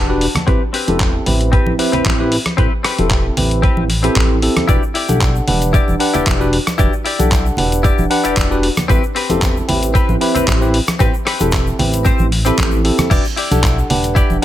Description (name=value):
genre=nu-disco, nu disco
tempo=114 BPM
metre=4/4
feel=swing 54% on 16ths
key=unclear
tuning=A4 = 440 Hz
part: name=tine electric piano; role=accompaniment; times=0.0-14.4 s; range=C4 to F#5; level=-18 LUFS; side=equal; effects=phaser, sidechain pumping, tape echo
part: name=direct-recorded clean electric guitar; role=riff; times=0.0-14.4 s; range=C4 to A5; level=-22 LUFS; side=left 4 dB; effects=wide subtle chorus, low-pass filter, tape echo
part: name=chorused synth bass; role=bass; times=0.0-14.4 s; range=E1 to B1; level=-19 LUFS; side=equal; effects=none
part: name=dusty soul sampler-style drum kit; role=drums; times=0.2-14.4 s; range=crash cymbal, handclaps, hi-hat, rim click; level=-21 LUFS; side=left 1 dB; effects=none
part: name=congas and egg shaker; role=percussion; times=0.3-14.4 s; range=none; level=-23 LUFS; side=right 1 dB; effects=none
part: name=electronic kick drum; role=drums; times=0.5-14.3 s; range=none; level=-16 LUFS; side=equal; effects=none
room=digital ambience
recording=none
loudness=-12 LUFS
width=side -12 dB against mid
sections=0.0-14.4 A section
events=clean electric guitar fill 0.0-0.5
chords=0.5 Am9; 4.7 Em7; 8.9 Am9; 13.1 Em7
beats=| 0.48 1.00 1.53 2.06 | 2.58 3.11 3.63 4.16 | 4.69 5.21 5.74 6.26 | 6.79 7.32 7.84 8.37 | 8.90 9.42 9.95 10.48 | 11.00 11.53 12.05 12.58 | 13.11 13.63 14.16